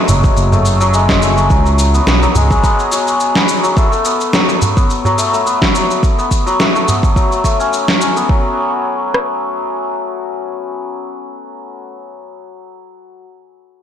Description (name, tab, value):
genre	organic downtempo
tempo	106 BPM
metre	4/4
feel	swing 54% on 16ths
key	F# minor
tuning	A4 = 439 Hz
part	santur	arpeggios	0.0-13.2 s	F#3 to F#4	-16 LUFS	left 2 dB	ping-pong delay
part	smooth synth bass	bass	0.1-2.6 s	F#1 to C#2	-13 LUFS	right 1 dB	sidechain pumping
part	electronic shaker and snare drum	drums	0.1-8.3 s	none	-17 LUFS	equal	none
part	darbuka	percussion	0.1-8.3 s	none	-20 LUFS	right 2 dB	none
part	deep house drum kit	drums	0.2-9.3 s	kick drum, rim click	-14 LUFS	right 1 dB	none
room	moderate lush hall reverb, RT60 2.0 s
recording	blown-out, overdriven recording, overdrive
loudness	-11 LUFS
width	side -9 dB against mid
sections	0.0-8.3 A section; 8.3-10.6 B section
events	none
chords	0.0 F#madd9; 1.5 C#7sus4; 3.8 F#madd11; 6.0 Bsus2; 8.3 N.C.